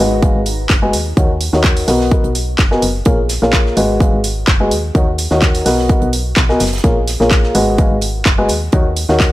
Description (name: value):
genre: piano house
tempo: 127 BPM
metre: 4/4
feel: straight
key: G# dorian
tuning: A4 = 440 Hz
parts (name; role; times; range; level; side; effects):
- clear grand piano; riff; 0.0-9.3 s; D#3 to G#5; -16 LUFS; left 1 dB; sidechain pumping, low-pass filter, tape echo
- solid FM bass; bass; 0.0-9.3 s; F#1 to D#2; -19 LUFS; equal; sidechain pumping
- electronic kick drum; drums; 0.2-9.3 s; none; -13 LUFS; equal; none
- tight metal drum kit; drums; 0.2-9.3 s; hi-hat, snare drum; -30 LUFS; right 4 dB; sidechain pumping on hats, high-pass filter on hats, high-pass filter on snare, high-pass filter on room
- punchy analog drum machine; drums; 0.5-9.3 s; handclaps, hi-hat; -19 LUFS; right 1 dB; none
room: small room ambience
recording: none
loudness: -11 LUFS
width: side -16 dB against mid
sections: 0.0-9.3 A section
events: none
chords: 0.0 G#m7; 1.2 D#m7; 1.9 Bmaj7; 3.1 A#m7; 3.8 G#m7; 5.0 D#m7; 5.7 Bmaj7; 6.8 A#m7; 7.5 G#m7; 8.7 D#m7